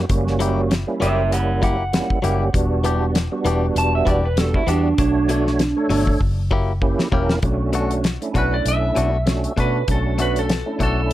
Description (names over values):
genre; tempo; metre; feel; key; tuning
straight-eighth soul blues; 98 BPM; 4/4; swing 56% on 16ths; B minor; A4 = 439 Hz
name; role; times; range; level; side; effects
electric guitar through a small old amp; second line; 0.0-6.2 s; D4 to A5; -23 LUFS; right 3 dB; none
tonewheel organ; accompaniment; 0.0-11.1 s; G3 to C#5; -24 LUFS; right 3 dB; overdrive, chorus vibrato, slow rotary speaker, plate reverb
vintage muted fingered electric bass; bass; 0.0-11.1 s; E1 to B2; -22 LUFS; equal; none
damped 70s drum kit; drums; 0.1-11.1 s; hi-hat, kick drum, snare drum; -22 LUFS; left 1 dB; none
direct-recorded clean electric guitar; stabs; 0.4-11.0 s; B2 to G4; -26 LUFS; left 5 dB; tape echo
clean lap steel guitar; melody; 8.4-11.1 s; A4 to E5; -24 LUFS; right 1 dB; none
room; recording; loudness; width
light reverb; none; -17 LUFS; side -14 dB against mid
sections
0.0-7.4 A section; 7.4-11.1 B section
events
clean electric guitar solo 0.0-7.4; drum fill 6.2-7.4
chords
0.0 F#7b9; 2.5 Em7; 5.0 Bm7; 6.2 F#7b9; 7.4 Bm7